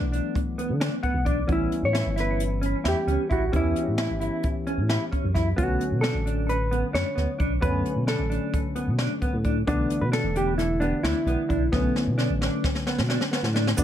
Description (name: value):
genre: progressive instrumental, band music in an uneven meter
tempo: 264 BPM (eighths)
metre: 9/8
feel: straight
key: B minor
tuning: A4 = 439 Hz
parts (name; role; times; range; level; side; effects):
- hollow-body jazz guitar; melody; 0.0-13.8 s; B3 to C#5; -28 LUFS; right 1 dB; digital delay
- barky tine electric piano; accompaniment; 0.0-13.8 s; D3 to F#5; -31 LUFS; left 3 dB; analog chorus
- mellow electric guitar; arpeggios; 0.0-13.8 s; B3 to E4; -30 LUFS; right 1 dB; lush chorus
- smooth gliding synth bass; bass; 0.0-13.8 s; E1 to D3; -26 LUFS; equal; none
- jazz brush drum kit; drums; 0.1-13.8 s; hi-hat, kick drum, snare drum; -29 LUFS; equal; none
- tube shaker; percussion; 13.8 s; none; -30 LUFS; right 8 dB; none
room: light reverb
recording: none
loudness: -22 LUFS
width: side -10 dB against mid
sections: 0.0-13.8 A section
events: tine electric piano fill 0.8-1.5; drum fill 11.7-13.8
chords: 0.0 D6; 1.5 A7; 5.6 Bm7; 9.7 E7sus4; 11.7 Bm7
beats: 0.13 0.35 0.58 0.81 1.04 1.26 | 1.49 1.72 1.94 2.17 2.40 2.63 2.85 3.08 3.31 | 3.53 3.76 3.99 4.21 4.44 4.67 4.90 5.12 5.35 | 5.58 5.81 6.03 6.26 6.49 6.71 6.94 7.17 7.40 | 7.62 7.85 8.08 8.31 8.54 8.76 8.99 9.22 9.45 | 9.68 9.90 10.13 10.36 10.59 10.82 11.04 11.27 11.50 | 11.73 11.96 12.19 12.41 12.64 12.87 13.10 13.33 13.55 | 13.78